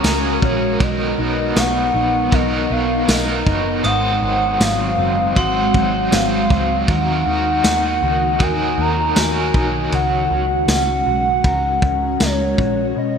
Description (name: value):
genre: dream pop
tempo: 79 BPM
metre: 4/4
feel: straight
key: unclear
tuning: A4 = 438 Hz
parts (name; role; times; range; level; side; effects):
- overdriven electric guitar; accompaniment; 0.0-10.4 s; Ab2 to C5; -24 LUFS; right 4 dB; tremolo, lush chorus
- ethereal airy pad; sustained chords; 0.0-13.2 s; Eb3 to Bb4; -23 LUFS; right 1 dB; ensemble chorus, built-in reverb
- mellow electric guitar; arpeggios; 0.0-13.2 s; Ab2 to Bb4; -24 LUFS; left 5 dB; lush chorus, ping-pong delay
- vintage muted picked electric bass; bass; 0.0-12.9 s; F#1 to Eb2; -24 LUFS; equal; none
- vintage drum kit; drums; 0.0-12.8 s; kick drum, ride cymbal, snare drum, tambourine; -20 LUFS; equal; gated reverb
- glockenspiel with hard plastic mallets; texture; 0.0-6.8 s; Bb5 to Eb6; -30 LUFS; equal; ping-pong delay
- warbly nostalgic lead; melody; 0.4-13.2 s; Db5 to Bb5; -20 LUFS; equal; chorus, ping-pong delay
room: moderate lush hall reverb, RT60 2.6 s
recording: bright 1980s-style digital production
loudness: -15 LUFS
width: side -6 dB against mid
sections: 0.0-13.2 A section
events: none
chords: 0.0 Gbadd9; 0.8 Bmaj7; 3.8 Ab7; 6.9 Ebm; 9.9 Gbadd9